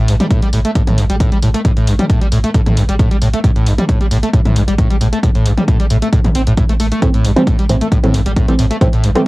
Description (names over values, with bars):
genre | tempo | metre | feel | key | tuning
driving peak-time techno | 134 BPM | 4/4 | straight | A minor | A4 = 440 Hz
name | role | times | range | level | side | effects
screaming distorted acid line | riff | 0.0-9.2 s | G2 to C4 | -16 LUFS | equal | distortion, lush chorus, sidechain pumping, tape echo
warm sub bass | bass | 0.0-9.2 s | A1 | -18 LUFS | equal | tube saturation, sidechain pumping, low-pass filter
punchy analog drum machine | drums | 0.1-9.2 s | hi-hat, toms | -22 LUFS | equal | cassette tape
electronic kick drum | drums | 0.3-8.9 s | none | -14 LUFS | equal | cassette tape
filtered dub chord stab | stabs | 7.0-9.2 s | E3 to C4 | -17 LUFS | right 1 dB | chorus, sidechain pumping, tape echo
room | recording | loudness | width
moderate booth ambience, RT60 0.2 s | home recording on cassette | -11 LUFS | side -20 dB against mid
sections
0.0-9.3 A section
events
none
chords
none